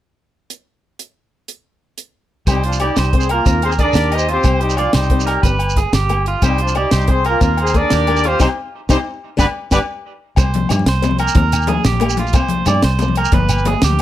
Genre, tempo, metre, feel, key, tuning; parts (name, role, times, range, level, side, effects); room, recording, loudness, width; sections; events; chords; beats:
highlife guitar band; 122 BPM (dotted quarters); 12/8; straight; C minor; A4 = 439 Hz
tight funk drum kit; drums; 0.5-14.0 s; hi-hat, kick drum, snare drum; -18 LUFS; equal
warm horn section; melody; 2.5-9.8 s; F3 to Eb5; -19 LUFS; left 1 dB
fingerpicked old ladder-braced acoustic guitar; accompaniment; 2.5-13.9 s; G3 to Eb4; -24 LUFS; left 6 dB
electric guitar at the edge of break-up; arpeggios; 2.5-14.0 s; Eb4 to D5; -22 LUFS; right 5 dB; tape echo
fingered electric bass; bass; 2.5-14.0 s; G1 to G2; -18 LUFS; equal
agogo bells; percussion; 2.5-14.0 s; -26 LUFS; left 7 dB
shekere; percussion; 2.5-13.9 s; -25 LUFS; right 4 dB
congas; percussion; 10.4-14.0 s; -22 LUFS; left 5 dB
light reverb; -13 LUFS; side -13 dB against mid
0.5-2.5 A section; 2.5-10.4 B section; 10.4-14.0 C section
band accent 8.4-10.4
0.5 N.C.; 2.5 Cm; 3.5 Ebsus2; 4.4 Cm; 5.4 G; 6.4 Cm; 7.4 Ebsus2; 8.4 Cm; 9.4 G; 10.4 Cm; 11.4 Ebsus2; 12.3 Cm; 13.3 G
| 0.50 0.99 1.49 1.98 | 2.47 2.97 3.46 3.95 | 4.45 4.94 5.44 5.93 | 6.42 6.92 7.41 7.91 | 8.40 8.89 9.39 9.88 | 10.37 10.87 11.36 11.85 | 12.35 12.84 13.33 13.83